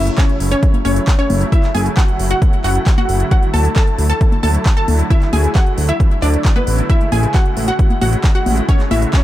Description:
uplifting trance; 134 BPM; 4/4; straight; F# minor; A4 = 444 Hz
wide unison pluck; melody; 0.0-9.2 s; B3 to A5; -20 LUFS; equal; sidechain pumping, ping-pong delay
clear grand piano; second line; 0.0-9.2 s; B4 to A5; -27 LUFS; equal; sidechain pumping, tape echo
filtered supersaw swell; sustained chords; 0.0-9.1 s; C#3 to F#4; -24 LUFS; equal; sidechain pumping
fat analog bass; bass; 0.0-9.1 s; F#1 to D2; -16 LUFS; equal; tube saturation, sidechain pumping
big-room dance drum kit; drums; 0.1-9.2 s; congas, handclaps, hi-hat; -23 LUFS; left 2 dB
electronic kick drum; drums; 0.2-9.2 s; -13 LUFS; equal
digital ambience; -12 LUFS; side -14 dB against mid
0.0-9.2 A section
0.0 F#m7; 3.3 Dadd9; 6.9 Amaj7

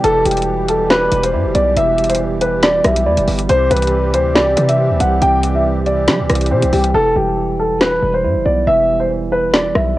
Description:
hip hop, drill; 139 BPM; 4/4; half-time; E minor; A4 = 440 Hz
dark concert grand piano; melody; 0.0-9.9 s; G4 to G5; -15 LUFS; equal; cassette tape, analog delay
bright tine electric piano; accompaniment; 0.0-10.0 s; C3 to E4; -22 LUFS; right 6 dB; cassette tape
musette accordion; sustained chords; 0.0-6.9 s; B2 to G4; -24 LUFS; left 1 dB; cassette tape
hard-hitting 808-style bass; bass; 0.0-10.0 s; E1 to G3; -19 LUFS; equal
drill drum kit; drums; 0.0-9.9 s; hi-hat, rim click, snare drum; -18 LUFS; left 1 dB; overdrive, cassette tape
light reverb; home recording on cassette; -12 LUFS; side -16 dB against mid
0.0-6.9 A section; 6.9-10.0 B section
hi-hats muted 6.9-10.0
0.0 Em; 3.5 C; 6.9 Em

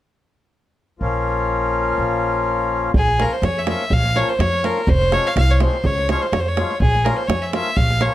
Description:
balkan folk, Balkan wedding band; 124 BPM; 2/4; swing 54% on 16ths; Bb minor; A4 = 439 Hz
accordion; accompaniment; 1.0-8.1 s; F3 to F4; -22 LUFS; left 3 dB
upright bass; bass; 1.0-8.1 s; F1 to F2; -20 LUFS; equal
davul; percussion; 2.9-8.1 s; -22 LUFS; right 2 dB
clear fiddle; melody; 3.0-8.1 s; Ab4 to F5; -20 LUFS; equal; tape echo
moderate small room reverb, RT60 0.5 s; -16 LUFS; side -14 dB against mid
1.0-2.9 A section; 2.9-8.1 B section
1.0 Bbm; 4.9 Fm; 5.8 Db; 6.8 Bbm

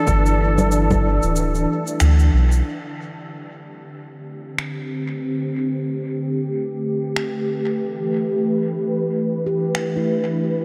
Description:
ambient dub; 93 BPM; 4/4; swing 59% on 16ths; A minor; A4 = 440 Hz
trumpet with plunger mute; melody; 0.0-2.0 s; A4; -29 LUFS; equal; dub echo
warm analog pad; sustained chords; 0.0-10.6 s; D3 to B4; -24 LUFS; equal; chorus
soft dub sub bass; bass; 0.1-2.6 s; D1 to D2; -19 LUFS; equal
electronic cabasa, congas and finger snaps; drums; 0.1-9.9 s; -31 LUFS; equal; dub echo
electronic kick drum; drums; 0.1-1.0 s; -25 LUFS; equal; overdrive
handpan; arpeggios; 9.5-10.6 s; E4 to G4; -29 LUFS; equal; tape echo
wet cathedral reverb, RT60 7.1 s; dreamy mix soaked in reverb; -21 LUFS; mono
0.0-2.7 A section; 2.7-10.6 B section
kick drops out 1.4-2.7; band accent 2.0-2.3
0.0 G69; 2.7 Am11; 7.8 G69

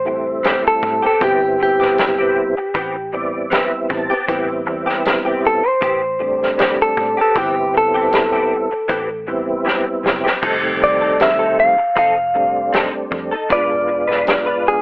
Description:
straight-eighth soul blues; 78 BPM; 4/4; swing 54% on 16ths; A minor; A4 = 440 Hz
direct-recorded clean electric guitar; melody; 0.0-14.8 s; G4 to F5; -16 LUFS; equal
tonewheel organ; accompaniment; 0.0-14.8 s; Eb3 to A5; -21 LUFS; right 1 dB; slow rotary speaker, chorus vibrato
vintage muted fingered electric bass; bass; 0.0-14.8 s; E1 to A2; -36 LUFS; equal
direct-recorded clean electric guitar; stabs; 0.1-14.7 s; E3 to B4; -23 LUFS; left 1 dB; ensemble chorus, digital delay
warm soul drum kit; drums; 0.4-14.5 s; crash cymbal, hi-hat, kick drum, snare drum; -19 LUFS; equal
light reverb; telephone sound; -14 LUFS; side -25 dB against mid
0.0-14.8 A section
tonewheel organ fill 2.7-4.3; drum fill 9.7-10.4
0.0 Am9; 10.4 F7; 13.5 E7b9

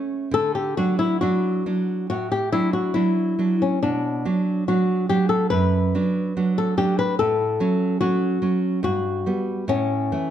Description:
romantic duo for nylon-string guitar and classical guitar; 63-74 BPM; 4/4; rubato; D major; A4 = 439 Hz
nylon-string guitar; accompaniment; 0.0-10.3 s; F#2 to D4; -22 LUFS; right 3 dB
flamenco guitar; melody; 0.3-10.3 s; C#4 to B4; -23 LUFS; left 5 dB
moderate recital hall reverb, RT60 1.4 s; dark, warm production; -20 LUFS; side -10 dB against mid
0.0-10.3 A section
0.3 D; 3.8 Bm; 7.2 F#m/A; 8.8 Gmaj7; 9.7 A

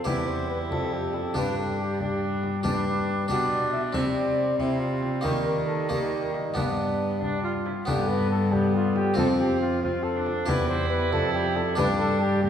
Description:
classical, renaissance-style consort dance; 92 BPM (dotted quarters); 6/8; straight; A4 = 442 Hz
dark cornet; melody; 0.0-12.5 s; D4 to E5; -30 LUFS; equal
rich viola; second line; 0.0-12.5 s; Bb3 to F4; -32 LUFS; right 2 dB
harpsichord; accompaniment; 0.0-12.5 s; E2 to E5; -30 LUFS; equal
mellow bassoon; accompaniment; 0.0-12.5 s; D3 to G3; -32 LUFS; equal
rich cello; bass; 0.0-12.5 s; E2 to Eb3; -29 LUFS; left 1 dB
frame drum; percussion; 0.1-12.5 s; -33 LUFS; left 1 dB
wet recital hall reverb, RT60 1.6 s; heard from further back in the room; -23 LUFS; side -8 dB against mid
0.0-7.9 A section; 7.9-12.5 A section
0.1 Em; 1.4 G; 4.0 C; 5.2 Eb; 6.6 G; 9.2 F; 10.5 Em; 11.8 G5

